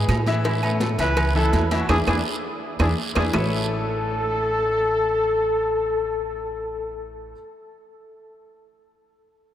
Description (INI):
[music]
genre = latin, salsa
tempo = 166 BPM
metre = 4/4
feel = straight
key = A major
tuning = A4 = 440 Hz
[part]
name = brilliant trombone section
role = melody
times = 0.0-7.0 s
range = B3 to B4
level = -24 LUFS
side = left 1 dB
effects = none
[part]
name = bright upright piano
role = accompaniment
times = 0.0-7.3 s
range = E3 to E5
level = -28 LUFS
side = left 2 dB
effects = none
[part]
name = upright bass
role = bass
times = 0.0-7.3 s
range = A1 to A2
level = -26 LUFS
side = right 1 dB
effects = none
[part]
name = claves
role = percussion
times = 0.1-3.4 s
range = none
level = -36 LUFS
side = right 8 dB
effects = none
[part]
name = congas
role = percussion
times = 0.1-3.4 s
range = none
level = -31 LUFS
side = equal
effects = none
[part]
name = cowbell and bongos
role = percussion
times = 0.1-3.4 s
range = none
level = -34 LUFS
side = left 3 dB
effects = none
[part]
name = guiro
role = percussion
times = 0.1-3.4 s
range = none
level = -36 LUFS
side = right 6 dB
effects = none
[part]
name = timbales and agogo bells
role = percussion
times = 0.1-3.4 s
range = none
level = -32 LUFS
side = right 5 dB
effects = none
[sound]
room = wet cathedral reverb, RT60 5.2 s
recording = in a vast, echoing space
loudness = -20 LUFS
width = side -11 dB against mid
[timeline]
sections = 0.0-3.3 A section; 3.3-6.2 B section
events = band accent 1.9-3.3; drum fill 2.4-3.3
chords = 0.5 Aadd9; 1.9 E7; 3.3 Aadd9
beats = 0.09 | 0.45 0.81 1.17 1.53 | 1.90 2.26 2.62 2.98 | 3.34 3.70 4.06 4.42 | 4.78 5.14 5.50 5.87